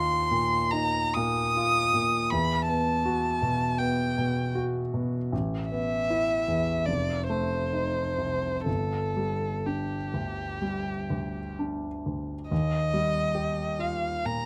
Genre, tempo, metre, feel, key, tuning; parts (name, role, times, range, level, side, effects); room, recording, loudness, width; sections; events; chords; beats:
classical, impressionist duo for violin and grand piano; 60-82 BPM; 4/4; rubato; G major; A4 = 439 Hz
warm violin; melody; 0.0-14.5 s; G4 to Eb6; -30 LUFS; equal
clear grand piano; accompaniment; 0.0-14.5 s; F1 to G4; -31 LUFS; equal
light reverb; close, detailed microphones; -28 LUFS; mono
0.0-12.5 A section; 12.5-14.5 B section
0.0 Ebsus2; 2.3 Emadd9; 5.3 Asus2; 6.9 F7; 8.7 G5; 12.5 Ebadd9
0.73 1.56 | 2.32 3.05 3.79 4.56 | 5.32 6.10 6.88 7.73 | 8.67 9.66 10.61 11.57 | 12.51 13.34 14.24